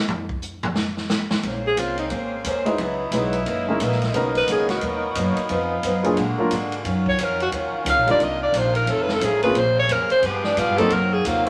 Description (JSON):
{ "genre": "jazz, big band swing", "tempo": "177 BPM", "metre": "4/4", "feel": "swing 63% on 8ths", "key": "Bb minor", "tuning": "A4 = 440 Hz", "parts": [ { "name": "swinging big-band drum kit", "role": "drums", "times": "0.1-11.5 s", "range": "hi-hat, kick drum, ride cymbal, snare drum, toms", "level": "-31 LUFS", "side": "equal", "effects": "none" }, { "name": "picked old ladder-braced acoustic guitar", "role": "accompaniment", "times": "1.4-11.5 s", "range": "Gb2 to C5", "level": "-30 LUFS", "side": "equal", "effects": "none" }, { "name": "warm saxophone section", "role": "sustained chords", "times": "1.4-11.5 s", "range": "C3 to Bb4", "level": "-30 LUFS", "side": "equal", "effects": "none" }, { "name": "upright bass", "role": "bass", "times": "1.4-11.5 s", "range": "F1 to Bb2", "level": "-30 LUFS", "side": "equal", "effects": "none" }, { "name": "breathy alto saxophone", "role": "melody", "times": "1.7-2.1, 4.4-4.8, 7.1-11.5 s", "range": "D4 to F5", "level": "-22 LUFS", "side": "equal", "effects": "none" }, { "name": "warm upright piano", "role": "accompaniment", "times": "2.6-11.5 s", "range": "Gb3 to Cb5", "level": "-26 LUFS", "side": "equal", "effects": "none" } ], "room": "wet studio reverb, RT60 0.5 s", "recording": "none", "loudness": "-22 LUFS", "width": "mono", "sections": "0.0-1.4 A section; 1.4-11.5 A section", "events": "drum solo 0.0-1.4; alto saxophone solo 1.4-11.5", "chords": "0.0 N.C.; 1.4 Bbm9; 2.8 Dbm11; 3.5 Gb13; 4.1 Bmaj7; 5.5 Fm7b5; 6.2 Bb7b13; 6.8 Ebm9; 8.2 Cm11; 8.9 F7alt; 9.6 Bbm9; 10.2 G7b9; 10.9 Cm7b5" }